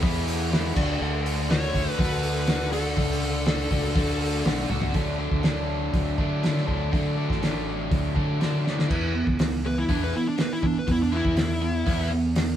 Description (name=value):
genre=classic rock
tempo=121 BPM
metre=4/4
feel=straight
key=unclear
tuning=A4 = 440 Hz
part: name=overdriven electric guitar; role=riff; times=0.0-12.6 s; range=D3 to F#4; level=-27 LUFS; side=right 1 dB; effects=none
part: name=fuzz fingered electric bass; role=bass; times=0.0-12.6 s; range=A1 to E3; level=-28 LUFS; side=equal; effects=overdrive
part: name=cloth-damped thuddy drum kit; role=drums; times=0.0-12.5 s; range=crash cymbal, hi-hat, kick drum, snare drum, toms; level=-26 LUFS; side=equal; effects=none
part: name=dark smooth lead guitar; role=melody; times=1.5-4.4, 9.7-12.1 s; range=D4 to C#5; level=-29 LUFS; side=left 1 dB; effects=overdrive
room=moderate studio reverb, RT60 0.8 s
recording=band playing live in one room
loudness=-22 LUFS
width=side -10 dB against mid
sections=0.0-4.9 A section; 4.9-8.9 B section; 8.9-12.6 C section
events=drum fill 4.7, 8.7; lead electric guitar solo 8.9-12.6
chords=0.0 E; 0.8 D; 8.9 E5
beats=0.03 0.52 | 1.01 1.50 1.99 2.48 | 2.98 3.47 3.96 4.45 | 4.95 5.44 5.93 6.43 | 6.92 7.42 7.91 8.41 | 8.90 9.40 9.89 10.39 | 10.88 11.38 11.88 12.37